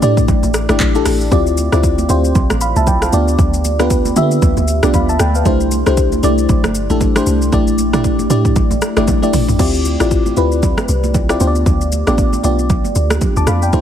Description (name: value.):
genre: amapiano.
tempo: 116 BPM.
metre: 4/4.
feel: swing 58% on 16ths.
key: D dorian.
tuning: A4 = 440 Hz.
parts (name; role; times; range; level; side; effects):
mellow FM electric piano; accompaniment; 0.0-13.8 s; A3 to D6; -16 LUFS; left 1 dB; chorus, phaser.
deep log drum bass; bass; 0.0-13.8 s; G1 to D3; -17 LUFS; equal; none.
deep house drum kit; drums; 0.0-13.8 s; crash cymbal, handclaps, hi-hat, kick drum, rim click, shaker, toms; -17 LUFS; equal; overdrive.
congas; percussion; 0.0-13.8 s; none; -24 LUFS; right 8 dB; none.
room: little or no reverb.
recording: heavily compressed radio sound.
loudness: -12 LUFS.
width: side -9 dB against mid.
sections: 0.0-9.6 A section; 9.6-13.8 B section.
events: drop 0.0-9.6; drum fill 9.1-9.6.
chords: 0.0 A7sus4; 1.3 Dm11; 3.1 G7/D; 5.5 C69; 7.5 A7sus4; 9.6 Dm11; 11.4 G7.